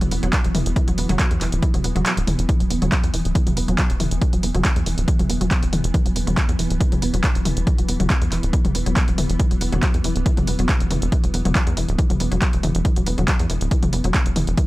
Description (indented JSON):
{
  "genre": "driving peak-time techno",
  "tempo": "139 BPM",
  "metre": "4/4",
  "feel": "straight",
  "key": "unclear",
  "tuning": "A4 = 441 Hz",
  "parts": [
    { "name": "resonant blip pluck", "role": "riff", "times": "0.0-14.7 s", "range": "E3 to B3", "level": "-27 LUFS", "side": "left 1 dB", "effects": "chorus, sidechain pumping, analog delay" },
    { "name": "tight sequencer bass", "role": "bass", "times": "0.0-14.6 s", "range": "D1 to E2", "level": "-23 LUFS", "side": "equal", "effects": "sidechain pumping" },
    { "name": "swarming drone", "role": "drone", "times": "0.0-14.7 s", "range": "E3 to B3", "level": "-30 LUFS", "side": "equal", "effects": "built-in reverb, sidechain pumping" },
    { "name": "punchy analog drum machine", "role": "drums", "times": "0.0-14.7 s", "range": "handclaps, hi-hat, toms", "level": "-25 LUFS", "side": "equal", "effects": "none" },
    { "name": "electronic kick drum", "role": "drums", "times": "0.3-14.7 s", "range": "none", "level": "-19 LUFS", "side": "equal", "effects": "none" }
  ],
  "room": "digital ambience",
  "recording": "dry, gritty hardware recording",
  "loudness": "-17 LUFS",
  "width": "side -18 dB against mid",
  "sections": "0.0-14.7 A section",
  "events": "kick drops out 2.1-2.5",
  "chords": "0.0 E5"
}